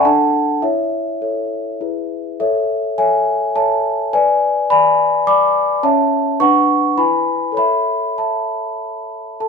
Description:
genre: classical, lullaby for celesta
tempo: 97-107 BPM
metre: 3/4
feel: rubato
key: A major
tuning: A4 = 441 Hz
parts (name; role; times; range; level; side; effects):
- large celesta; solo; 0.0-9.5 s; C#4 to D6; -14 LUFS; left 1 dB; none
room: moderate stone room reverb, RT60 1.1 s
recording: band playing live in one room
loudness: -14 LUFS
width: side -5 dB against mid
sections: 0.0-9.4 A section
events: none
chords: 0.0 D; 0.6 A/E; 1.8 E; 2.4 A; 4.1 G#dim/B; 5.8 A/C#; 6.4 Bm/D; 7.0 E; 7.6 A

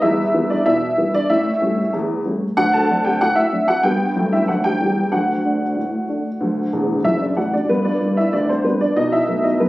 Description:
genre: ragtime piano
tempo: 94 BPM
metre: 2/4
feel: straight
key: G major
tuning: A4 = 439 Hz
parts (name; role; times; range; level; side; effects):
- honky-tonk upright piano; solo; 0.0-9.7 s; E1 to A5; -16 LUFS; equal; none
room: moderate club reverb, RT60 0.5 s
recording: recorded on a phone in the room, club reverb, compression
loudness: -16 LUFS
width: side -18 dB against mid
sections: 0.0-9.7 A section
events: honky-tonk piano fill 6.7-7.7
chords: 0.0 Em; 1.3 A7; 2.6 D7; 3.8 G; 5.1 D; 7.7 G; 9.0 B7

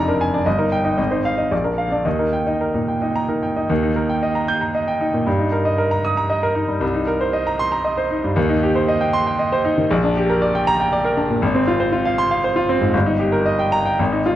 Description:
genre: classical, virtuoso piano study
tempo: 116 BPM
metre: 3/4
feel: rubato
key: Eb major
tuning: A4 = 440 Hz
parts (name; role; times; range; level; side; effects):
- clear grand piano; solo; 0.0-14.4 s; F1 to G6; -17 LUFS; equal; none
room: moderate large studio reverb, RT60 1.3 s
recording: worn, warbling old tape, cassette tape, warbly pitch drift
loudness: -17 LUFS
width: side -12 dB against mid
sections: 0.0-3.7 A section; 3.7-14.4 B section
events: none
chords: 0.5 Eb/G; 1.0 Fm7/Ab; 1.5 Bb; 2.1 Eb; 5.3 Eb/G; 6.8 Cm7; 8.4 Cm/Eb; 9.9 Gm/Bb; 11.4 Fm/Ab; 12.9 Eb/G

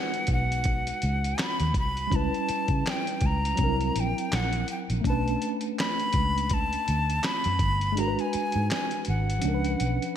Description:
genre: R&B, neo-soul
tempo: 82 BPM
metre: 4/4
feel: swing 56% on 16ths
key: unclear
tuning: A4 = 440 Hz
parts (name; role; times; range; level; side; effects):
- breathy jazz flute; melody; 0.0-10.2 s; F#5 to B5; -29 LUFS; left 1 dB; slapback echo
- tine electric piano; accompaniment; 0.0-10.2 s; E#3 to B4; -31 LUFS; right 1 dB; overdrive, fast stereo tremolo, slapback echo
- dusty soul sampler-style drum kit; drums; 0.1-10.2 s; handclaps, hi-hat, kick drum, snare drum; -30 LUFS; equal; none
- vintage muted fingered electric bass; bass; 0.3-10.0 s; G1 to C#3; -28 LUFS; equal; none
room: light reverb, digital ambience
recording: none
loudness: -24 LUFS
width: side -9 dB against mid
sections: 0.0-10.2 A section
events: kick muted 8.0-10.2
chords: 0.0 G#m7; 2.1 C#m7b5; 3.6 C7#11; 5.0 Bm9; 8.0 G#m7b5; 9.4 C#7b9

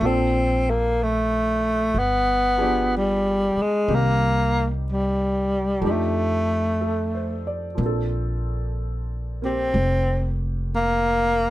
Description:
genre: jazz ballad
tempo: 62 BPM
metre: 4/4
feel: swing 67% on 8ths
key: Bb major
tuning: A4 = 440 Hz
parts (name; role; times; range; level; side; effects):
- breathy tenor saxophone; melody; 0.0-11.5 s; G3 to C4; -21 LUFS; equal; none
- clear grand piano; accompaniment; 0.0-11.5 s; Bb2 to D5; -30 LUFS; right 1 dB; none
- upright bass; bass; 0.0-11.5 s; F1 to F2; -25 LUFS; equal; none
room: little or no reverb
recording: close, detailed microphones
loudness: -20 LUFS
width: side -15 dB against mid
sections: 0.0-7.8 A section; 7.8-11.5 B section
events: none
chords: 0.0 Bbmaj9; 1.9 G7b9; 3.9 Cm7; 5.8 F13; 7.8 Bbmaj9

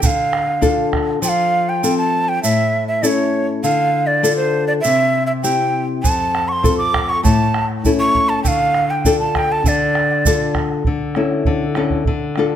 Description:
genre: andean folk, Andean ensemble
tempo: 100 BPM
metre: 2/4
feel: straight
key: D minor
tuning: A4 = 440 Hz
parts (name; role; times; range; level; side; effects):
- breathy large quena; melody; 0.0-10.6 s; C5 to D6; -18 LUFS; right 2 dB; none
- nylon-string guitar; accompaniment; 0.0-12.6 s; F2 to A4; -18 LUFS; left 4 dB; none
- bombo; percussion; 0.0-1.1, 6.0-12.5 s; none; -21 LUFS; right 2 dB; none
- tube shaker; percussion; 0.0-10.4 s; none; -26 LUFS; right 6 dB; none
room: moderate recital hall reverb, RT60 1.8 s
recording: none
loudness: -14 LUFS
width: side -10 dB against mid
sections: 0.0-1.2 A section; 1.2-10.9 A section; 10.9-12.6 B section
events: none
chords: 0.0 Dm; 1.2 F; 2.4 A; 3.6 Dm; 4.8 C; 6.0 F; 7.2 A; 8.4 Dm; 10.9 A/D

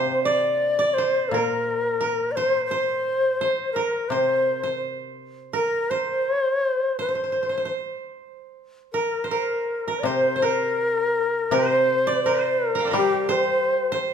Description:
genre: japanese traditional, Japanese chamber music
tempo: 74-87 BPM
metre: 4/4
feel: rubato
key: C suspended pentatonic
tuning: A4 = 440 Hz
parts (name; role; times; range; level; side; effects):
- bright reedy shakuhachi; melody; 0.0-14.0 s; G4 to D5; -22 LUFS; left 2 dB; none
- koto; second line; 0.0-14.1 s; Bb3 to Bb5; -27 LUFS; right 7 dB; none
- koto; accompaniment; 0.0-14.1 s; Bb2 to G3; -29 LUFS; left 3 dB; none
room: moderate recital hall reverb, RT60 1.3 s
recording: minimal, uncompressed stereo recording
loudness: -20 LUFS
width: side -7 dB against mid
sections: 0.0-8.6 A section; 8.6-14.1 B section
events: none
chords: none

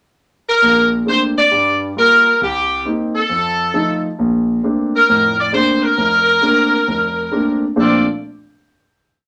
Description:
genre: jazz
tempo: 134 BPM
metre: 4/4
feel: swing 66% on 8ths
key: Bb major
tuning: A4 = 440 Hz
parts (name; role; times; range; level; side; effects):
- edgy saxophone section; melody; 0.5-8.1 s; C4 to D5; -16 LUFS; equal; none
- warm concert grand piano; accompaniment; 0.6-8.0 s; F1 to F4; -20 LUFS; equal; none
room: wet small room reverb, RT60 0.5 s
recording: none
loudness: -15 LUFS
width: mono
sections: 0.0-0.6 pickup bar; 0.6-7.8 A section; 7.8-9.3 final chord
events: none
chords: 0.0 N.C.; 0.6 Bbmaj9; 1.5 Gm7; 2.4 Cm7; 3.3 F7; 4.2 Bbmaj9

